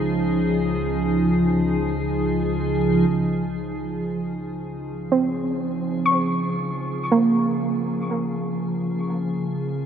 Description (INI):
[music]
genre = ambient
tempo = free time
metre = none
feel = none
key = Db major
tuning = A4 = 439 Hz
[part]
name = glassy FM pad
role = sustained chords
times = 0.0-9.9 s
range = Db2 to Ab4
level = -22 LUFS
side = equal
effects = ensemble chorus, built-in reverb
[part]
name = analog drone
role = drone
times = 0.0-3.2 s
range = Db3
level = -30 LUFS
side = right 1 dB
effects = chorus
[part]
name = soft round pluck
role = arpeggios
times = 5.1-9.9 s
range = Bb3 to Db6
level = -22 LUFS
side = right 2 dB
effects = chorus, diffuse ambient delay
[sound]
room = wet cathedral reverb, RT60 7.7 s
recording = in a vast, echoing space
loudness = -20 LUFS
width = side -8 dB against mid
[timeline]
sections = 0.0-3.1 A section; 3.1-9.9 B section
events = fade-in on ambient pad 3.1-9.9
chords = 0.0 Fm7/Db; 3.1 Dbmaj7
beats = free time